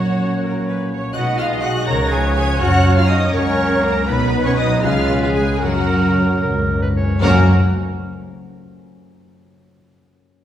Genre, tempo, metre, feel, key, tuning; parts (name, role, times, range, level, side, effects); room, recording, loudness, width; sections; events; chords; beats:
classical, dramatic, fast romantic movement for symphony orchestra; 74-83 BPM (dotted quarters); 6/8; rubato; F# major; A4 = 438 Hz
warm symphonic violin section; melody; 0.0-7.5 s; E#5 to A#6; -29 LUFS; equal
bright flute section; second line; 0.0-7.5 s; E#4 to A#5; -27 LUFS; right 1 dB
warm symphonic violin section; second line; 0.0-7.5 s; E#4 to A#5; -28 LUFS; left 2 dB
rich symphonic viola section; accompaniment; 0.0-7.5 s; A#3 to D#5; -25 LUFS; right 2 dB
warm French horn section; sustained chords; 0.0-7.4 s; E#3 to D#4; -23 LUFS; left 1 dB
concert harp; arpeggios; 0.0-8.8 s; F#2 to F#5; -25 LUFS; left 4 dB
clear trumpet; stabs; 0.0-7.4 s; A#4 to C#5; -26 LUFS; right 2 dB
dark symphonic cello section; bass; 0.0-7.5 s; E#3 to A#4; -23 LUFS; right 1 dB
warm symphonic double bass section; bass; 0.0-7.5 s; A#1 to F#2; -21 LUFS; right 1 dB
timpani; percussion; 2.6-3.3, 5.6-7.5 s; F#2; -21 LUFS; equal
clear clarinet; second line; 6.4-7.2 s; A#4 to C#5; -28 LUFS; left 1 dB
wet scoring stage reverb, RT60 1.7 s; heard from further back in the room; -14 LUFS; side -10 dB against mid
0.0-7.2 A section; 7.2-8.8 B section
timpani fill 5.6-7.2
0.0 F#/A#; 1.2 G#m7/B; 1.9 C#7; 2.6 F#; 4.1 B; 4.8 C#7; 5.6 F#
0.42 | 1.15 1.88 | 2.61 3.34 | 4.09 4.84 | 5.63 6.43 | 7.23 8.00